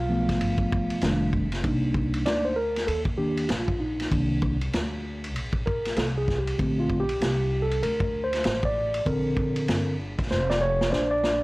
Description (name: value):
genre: hip hop, jazz-hop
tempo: 97 BPM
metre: 4/4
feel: swing 62% on 16ths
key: unclear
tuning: A4 = 439 Hz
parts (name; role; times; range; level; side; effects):
- mellow tine electric piano; accompaniment; 0.0-11.4 s; D3 to F5; -26 LUFS; equal; fast stereo tremolo
- upright bass; bass; 0.0-11.4 s; F1 to Eb2; -30 LUFS; equal; none
- vintage drum kit; drums; 0.3-11.4 s; hi-hat, kick drum, ride cymbal, snare drum; -29 LUFS; equal; none
room: little or no reverb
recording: dry, gritty hardware recording, vinyl crackle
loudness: -23 LUFS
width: side -22 dB against mid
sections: 0.0-1.6 A section; 1.6-11.4 B section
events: tine electric piano solo 0.0-1.6, 1.6-11.4; drum fill 10.3-11.4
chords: 0.0 G7; 1.0 F13; 1.6 Cm9; 6.6 Bbmaj7